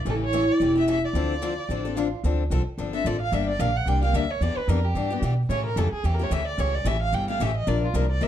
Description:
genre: acoustic string swing (jazz manouche)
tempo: 221 BPM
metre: 4/4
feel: swing 58% on 8ths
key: D minor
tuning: A4 = 439 Hz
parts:
  - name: picked steel-string acoustic guitar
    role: second line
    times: 0.0-2.2 s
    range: E4 to G4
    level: -25 LUFS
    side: equal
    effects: none
  - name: rich violin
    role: melody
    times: 0.1-8.3 s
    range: F4 to G5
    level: -28 LUFS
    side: right 2 dB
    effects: plate reverb
  - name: picked steel-string acoustic guitar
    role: accompaniment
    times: 0.1-8.3 s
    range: C3 to Bb4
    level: -29 LUFS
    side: left 7 dB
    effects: none
  - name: upright bass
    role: bass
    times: 0.1-8.3 s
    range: E1 to B2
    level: -25 LUFS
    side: right 1 dB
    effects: none
room: moderate studio reverb, RT60 0.8 s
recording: dark, warm production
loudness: -22 LUFS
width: side -10 dB against mid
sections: 0.0-2.2 A section; 2.2-8.3 B section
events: violin solo 2.2-8.3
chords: 0.1 A7; 1.1 Dm7; 3.3 Gm; 4.4 Em7; 5.5 A7; 7.7 Bbadd9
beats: | 0.05 0.33 0.60 0.87 | 1.14 1.41 1.69 1.96 | 2.23 2.50 2.77 3.04 | 3.32 3.59 3.86 4.13 | 4.40 4.68 4.95 5.22 | 5.49 5.76 6.04 6.31 | 6.58 6.85 7.12 7.39 | 7.67 7.94 8.21

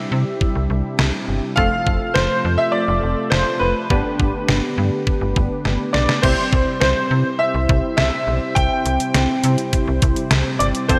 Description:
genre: synth-pop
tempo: 103 BPM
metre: 4/4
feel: straight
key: C major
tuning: A4 = 440 Hz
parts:
  - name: clear baby grand piano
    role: melody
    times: 0.0-11.0 s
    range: B4 to G5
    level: -24 LUFS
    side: equal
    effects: analog chorus, digital delay
  - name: funky polysynth comp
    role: accompaniment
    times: 0.0-11.0 s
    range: G3 to C5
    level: -27 LUFS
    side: equal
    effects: chorus, tremolo
  - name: phased analog pad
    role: sustained chords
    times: 0.0-11.0 s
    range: C3 to G4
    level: -29 LUFS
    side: equal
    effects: phaser, chorus
  - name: slap-like FM bass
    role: bass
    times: 0.1-11.0 s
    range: F1 to C3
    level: -23 LUFS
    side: equal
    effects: none
  - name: detuned 8-bit digital drum machine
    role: drums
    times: 0.4-11.0 s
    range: crash cymbal, hi-hat, kick drum, snare drum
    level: -23 LUFS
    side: equal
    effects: gated reverb
room: moderate lush hall reverb, RT60 2.9 s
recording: bright 1980s-style digital production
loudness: -19 LUFS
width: mono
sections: 0.0-6.2 A section; 6.2-11.0 B section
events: drum fill 5.7-6.2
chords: 0.0 C; 1.6 F; 3.9 Gadd9; 6.2 C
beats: 0.41 0.99 | 1.57 2.16 2.74 3.32 | 3.90 4.49 5.07 5.65 | 6.24 6.82 7.40 7.98 | 8.56 9.15 9.73 10.31 | 10.89

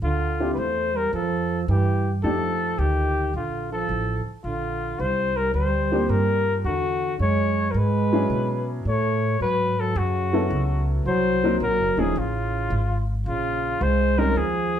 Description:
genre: jazz, small-group swing and bop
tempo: 109 BPM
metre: 4/4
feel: swing 67% on 8ths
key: unclear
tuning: A4 = 439 Hz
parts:
  - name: clear flugelhorn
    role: melody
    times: 0.0-14.8 s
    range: F4 to C#5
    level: -25 LUFS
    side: left 3 dB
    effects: plate reverb
  - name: breathy trombone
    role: second line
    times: 0.0-14.8 s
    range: Db3 to A3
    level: -28 LUFS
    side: right 3 dB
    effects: none
  - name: upright bass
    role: bass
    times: 0.0-14.8 s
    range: Eb1 to B2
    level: -26 LUFS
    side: right 1 dB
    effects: none
  - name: warm upright piano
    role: accompaniment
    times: 0.4-14.3 s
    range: F3 to Bb4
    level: -26 LUFS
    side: left 1 dB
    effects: none
room: wet club reverb, RT60 0.7 s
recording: heard from further back in the room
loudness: -21 LUFS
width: side -9 dB against mid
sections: 0.0-14.8 A section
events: none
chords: 0.0 Dmadd9; 2.2 F13; 4.4 Bb69; 6.6 E13; 8.9 A69; 11.1 Cm7b5; 12.2 Faug; 13.3 Bbm11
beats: | 0.02 0.57 1.12 1.68 | 2.23 2.78 3.33 3.88 | 4.44 4.99 5.54 6.09 | 6.64 7.20 7.75 8.30 | 8.85 9.40 9.95 10.51 | 11.05 11.61 12.16 12.71 | 13.26 13.81 14.36

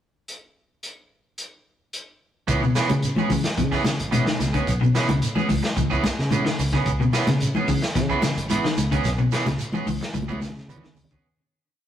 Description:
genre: afrobeat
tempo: 110 BPM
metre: 4/4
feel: straight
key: C# minor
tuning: A4 = 440 Hz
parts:
  - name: crunchy breakbeat drum kit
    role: drums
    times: 0.3-11.2 s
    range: hi-hat, kick drum, snare drum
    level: -28 LUFS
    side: equal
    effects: none
  - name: electric guitar at the edge of break-up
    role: stabs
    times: 2.5-11.3 s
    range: E3 to G#4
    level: -27 LUFS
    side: right 4 dB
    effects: none
  - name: fingered electric bass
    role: bass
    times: 2.5-11.2 s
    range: G#1 to C#3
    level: -27 LUFS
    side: equal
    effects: none
  - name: congas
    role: percussion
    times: 2.5-11.3 s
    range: none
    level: -28 LUFS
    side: equal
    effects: none
  - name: shekere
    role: percussion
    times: 2.5-11.2 s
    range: none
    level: -33 LUFS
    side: right 3 dB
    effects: none
  - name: clean electric guitar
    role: arpeggios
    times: 2.6-11.2 s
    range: B2 to E3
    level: -25 LUFS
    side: left 2 dB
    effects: tape echo
room: wet stone room reverb, RT60 1.2 s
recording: rough rehearsal-room recording, warm saturation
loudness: -20 LUFS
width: side -10 dB against mid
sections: 0.3-2.5 pickup bar; 2.5-11.3 groove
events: fade-out 9.1-11.3; drum fill 10.2-11.3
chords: 0.3 N.C.; 2.5 C#m7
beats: | 0.29 0.84 1.39 1.93 | 2.48 3.03 3.58 4.12 | 4.67 5.22 5.77 6.32 | 6.86 7.41 7.96 8.51 | 9.06 9.61 10.15 10.70

